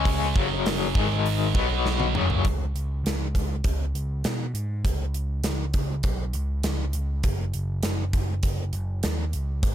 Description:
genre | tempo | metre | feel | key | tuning
hard rock | 100 BPM | 4/4 | straight | unclear | A4 = 440 Hz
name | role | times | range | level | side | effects
crunchy overdriven guitar | riff | 0.0-2.4 s | F#2 to C#4 | -26 LUFS | left 14 dB | tremolo
high-gain distorted guitar | riff | 0.0-2.4 s | F#2 to C#4 | -29 LUFS | right 16 dB | distortion
overdriven picked electric bass | bass | 0.0-9.7 s | F#1 to B2 | -27 LUFS | equal | none
gated 80s drum kit | drums | 0.1-9.7 s | hi-hat, kick drum, snare drum, toms | -26 LUFS | equal | none
room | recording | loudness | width
little or no reverb | none | -23 LUFS | side -11 dB against mid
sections
0.0-2.4 A section; 2.4-9.7 B section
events
drum fill 1.8-2.4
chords
0.3 F#5; 0.9 G#5; 1.5 B5; 2.1 F#5; 2.4 C#5; 7.2 F#5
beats
| 0.04 0.64 1.24 1.84 | 2.44 3.04 3.64 4.24 | 4.83 5.43 6.04 6.63 | 7.24 7.83 8.44 9.03 | 9.63

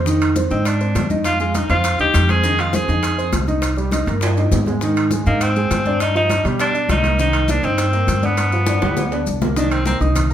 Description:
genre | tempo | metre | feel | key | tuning
Afro-Cuban jazz | 202 BPM | 4/4 | straight | C minor | A4 = 440 Hz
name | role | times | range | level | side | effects
warm upright piano | accompaniment | 0.0-10.3 s | Eb3 to Eb6 | -22 LUFS | right 1 dB | none
upright bass | bass | 0.0-10.3 s | C2 to B2 | -20 LUFS | equal | none
bongos | percussion | 0.1-10.3 s | none | -28 LUFS | left 3 dB | none
congas | percussion | 0.1-10.3 s | none | -28 LUFS | left 3 dB | none
maracas | percussion | 0.1-10.3 s | none | -34 LUFS | left 5 dB | none
timbales | percussion | 0.2-10.3 s | none | -27 LUFS | right 4 dB | none
bright tenor saxophone | melody | 0.5-10.0 s | Bb3 to Ab4 | -20 LUFS | equal | none
room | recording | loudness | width
moderate large studio reverb, RT60 1.1 s | band playing live in one room | -15 LUFS | side -10 dB against mid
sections
0.0-9.6 A section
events
drum fill 4.2-4.8, 8.7-9.6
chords
0.1 Fm7; 3.6 Cm7; 4.8 Abmaj7; 6.0 G7; 7.2 Cm7; 8.4 G7; 9.6 Cm7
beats
| 0.06 0.36 0.66 0.95 | 1.25 1.55 1.85 2.14 | 2.44 2.74 3.03 3.33 | 3.63 3.92 4.22 4.52 | 4.82 5.11 5.41 5.71 | 6.00 6.30 6.60 6.89 | 7.19 7.49 7.78 8.08 | 8.38 8.67 8.97 9.26 | 9.56 9.86 10.15

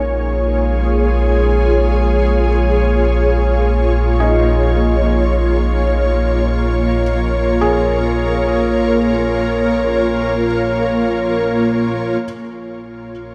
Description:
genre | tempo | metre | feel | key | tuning
ambient | free time | none | none | unclear | A4 = 440 Hz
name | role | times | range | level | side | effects
ethereal airy pad | sustained chords | 0.0-13.3 s | A#3 to G#5 | -18 LUFS | equal | ensemble chorus, built-in reverb, tremolo
felt-muted upright piano | arpeggios | 0.0-12.3 s | D#4 to C#5 | -28 LUFS | equal | tape echo
warm sub bass | bass | 0.0-13.3 s | A#1 | -20 LUFS | equal | none
room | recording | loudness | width
moderate concert hall reverb, RT60 2.1 s | none | -16 LUFS | mono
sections
0.0-12.2 A section; 12.2-13.3 B section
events
fade-in on felt piano 0.0-12.2; fade-out on sub bass 0.0-12.2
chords
0.0 A#m7; 12.2 A#m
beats
free time

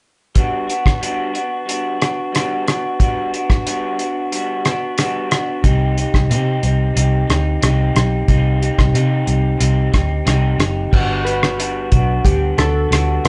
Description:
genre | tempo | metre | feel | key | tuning
indie pop, bedroom pop | 91 BPM | 4/4 | straight | G major | A4 = 440 Hz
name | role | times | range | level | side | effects
electric guitar through a small old amp | accompaniment | 0.3-13.3 s | C3 to G4 | -23 LUFS | equal | vibrato effect
cloth-damped thuddy drum kit | drums | 0.4-13.3 s | crash cymbal, hi-hat, kick drum, rim click | -19 LUFS | equal | none
vintage muted fingered electric bass | bass | 5.6-13.3 s | F#1 to C3 | -19 LUFS | equal | none
warm analog keys | melody | 11.2-13.3 s | G4 to B4 | -25 LUFS | equal | chorus
room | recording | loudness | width
moderate studio ambience, RT60 0.5 s | band playing live in one room, nothing above 10.7 kHz | -17 LUFS | mono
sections
0.4-10.9 A section; 10.9-13.3 B section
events
none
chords
0.4 Gmaj7; 5.6 Cm; 10.9 Gmaj7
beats
| 0.36 1.02 1.68 2.34 | 3.00 3.67 4.33 4.99 | 5.65 6.31 6.97 7.63 | 8.29 8.96 9.62 10.28 | 10.94 11.60 12.26 12.92

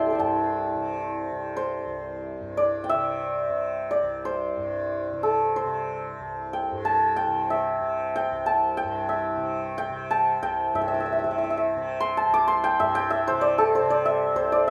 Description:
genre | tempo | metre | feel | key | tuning
indian classical, Hindustani | 92 BPM | 4/4 | uneven beats | C raga bhupali | A4 = 440 Hz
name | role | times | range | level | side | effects
santur | melody | 0.0-14.7 s | E4 to E6 | -26 LUFS | equal | none
tanpura | drone | 0.0-14.7 s | C2 to C3 | -36 LUFS | equal | none
room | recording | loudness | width
light reverb, small room ambience | rough home demo mix | -25 LUFS | mono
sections
0.2-10.7 A section; 10.7-14.7 B section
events
speeding up 0.0-14.7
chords
none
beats
| 0.22 0.89 1.56 2.24 | 2.90 3.57 4.23 4.89 | 5.55 6.21 6.86 7.51 | 8.16 8.81 9.46 10.10 | 10.74 11.38 12.01 12.64 | 13.27 13.90 14.53

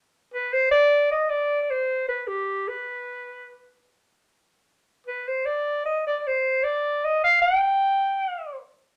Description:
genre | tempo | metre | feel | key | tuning
klezmer | 76 BPM | 3/4 | straight | unclear | A4 = 440 Hz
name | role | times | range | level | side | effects
clear clarinet | solo | 0.3-8.6 s | G4 to G5 | -24 LUFS | equal | none
room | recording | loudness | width
wet studio reverb, RT60 0.5 s | none | -24 LUFS | mono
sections
0.0-9.0 A section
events
none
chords
none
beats
0.30 1.09 | 1.88 2.67 3.46 | 4.25 5.04 5.83 | 6.62 7.41 8.20

